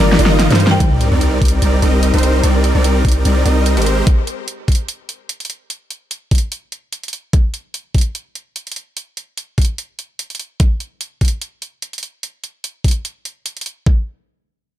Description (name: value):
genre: future bass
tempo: 147 BPM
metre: 4/4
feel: swing 54% on 16ths, half-time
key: C minor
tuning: A4 = 440 Hz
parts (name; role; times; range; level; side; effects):
- airy dreamy lead; arpeggios; 0.0-0.8 s; C5 to Eb5; -26 LUFS; left 1 dB; none
- thumb-piano-like synth pluck; arpeggios; 0.0-0.8 s; Bb4 to F5; -28 LUFS; equal; none
- supersaw chords; riff; 0.0-4.0 s; G3 to Eb5; -17 LUFS; right 1 dB; sidechain pumping, ping-pong delay
- long sustained 808-style bass; bass; 0.0-4.0 s; G1 to G2; -14 LUFS; equal; sidechain pumping
- pop drum kit; drums; 0.1-13.7 s; hi-hat, snare drum; -20 LUFS; equal; overdrive
- marimba with hard mallets; melody; 0.7-0.8 s; G5; -26 LUFS; right 1 dB; sidechain pumping, tape echo
- electronic kick drum; drums; 0.8-14.0 s; none; -13 LUFS; equal; overdrive
- sub drop; sound effects; 0.8-2.4 s; none; -23 LUFS; left 1 dB; none
room: light reverb, digital ambience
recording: dark, warm production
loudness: -14 LUFS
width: side -12 dB against mid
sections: 0.8-13.9 A section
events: drum fill 0.0-0.8; impact 0.8-2.4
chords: 0.0 Ebmaj9/G; 0.8 Cm9; 3.9 Abmaj9; 7.3 N.C.